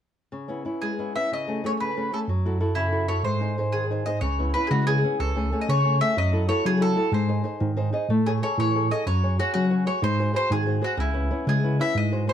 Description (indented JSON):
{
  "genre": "italian folk, Italian serenade",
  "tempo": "124 BPM (dotted quarters)",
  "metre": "6/8",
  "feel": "rubato",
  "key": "C# minor",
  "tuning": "A4 = 441 Hz",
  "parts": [
    { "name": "flamenco guitar", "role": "accompaniment", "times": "0.3-12.3 s", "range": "C#3 to D#5", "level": "-27 LUFS", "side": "left 1 dB", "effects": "none" },
    { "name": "mandolin", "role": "melody", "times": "0.8-12.3 s", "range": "E4 to E5", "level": "-26 LUFS", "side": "left 1 dB", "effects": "slapback echo" },
    { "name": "tine electric piano", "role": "bass", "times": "2.3-12.3 s", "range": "C#2 to F#3", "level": "-24 LUFS", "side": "right 1 dB", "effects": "medium tremolo" }
  ],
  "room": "light reverb",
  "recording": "dark, warm production",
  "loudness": "-22 LUFS",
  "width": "side -9 dB against mid",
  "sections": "0.3-4.2 A section; 4.2-12.3 B section",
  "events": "nylon-string guitar fill 7.6-8.1",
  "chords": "0.3 C#m7; 1.3 Amaj7/C#; 2.3 F#m7; 3.2 G#; 4.2 C#m7; 5.2 Amaj7/C#; 6.2 F#m7; 7.1 G#; 8.1 Amaj7; 9.1 F#sus2; 10.0 G#7; 11.0 C#m7",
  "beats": "| 0.32 0.82 | 1.31 1.80 | 2.27 2.75 | 3.23 3.72 | 4.21 4.71 | 5.20 5.68 | 6.17 6.64 | 7.12 7.60 | 8.09 8.58 | 9.06 9.54 | 10.02 10.50 | 10.98 11.46 | 11.95"
}